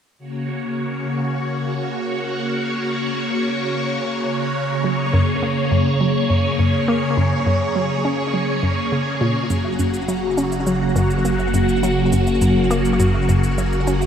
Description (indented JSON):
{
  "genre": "ambient, sequencer-driven space music",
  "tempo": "103 BPM",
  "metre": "4/4",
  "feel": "straight",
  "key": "unclear",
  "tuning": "A4 = 441 Hz",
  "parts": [
    { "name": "phased string machine", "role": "sustained chords", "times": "0.2-14.1 s", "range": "C#3 to C#5", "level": "-19 LUFS", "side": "equal", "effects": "ensemble chorus, phaser" },
    { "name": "wind-like tuned noise texture", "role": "texture", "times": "1.9-14.1 s", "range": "G#4 to C#5", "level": "-31 LUFS", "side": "right 2 dB", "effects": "built-in reverb" },
    { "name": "hollow square pluck", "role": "riff", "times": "4.8-14.0 s", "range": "F#2 to C#4", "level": "-21 LUFS", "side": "equal", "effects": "chorus, phaser, cassette tape, ping-pong delay" },
    { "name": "warm sub bass", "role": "bass", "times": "9.5-14.1 s", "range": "F#1", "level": "-26 LUFS", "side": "equal", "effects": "none" },
    { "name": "shaker and woodblock", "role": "percussion", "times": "9.5-14.1 s", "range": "none", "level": "-35 LUFS", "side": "right 1 dB", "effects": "ping-pong delay" }
  ],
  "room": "wet lush hall reverb, RT60 2.7 s",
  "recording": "none",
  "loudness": "-17 LUFS",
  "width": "side -8 dB against mid",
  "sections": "0.2-9.5 A section; 9.5-14.1 B section",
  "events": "fade-in on synth texture 0.2-9.5",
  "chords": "0.2 F#",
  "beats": "| 0.18 0.77 1.35 1.93 | 2.51 3.10 3.68 4.26 | 4.84 5.42 6.01 6.59 | 7.17 7.75 8.34 8.92 | 9.50 10.09 10.67 11.25 | 11.83 12.42 13.00 13.58"
}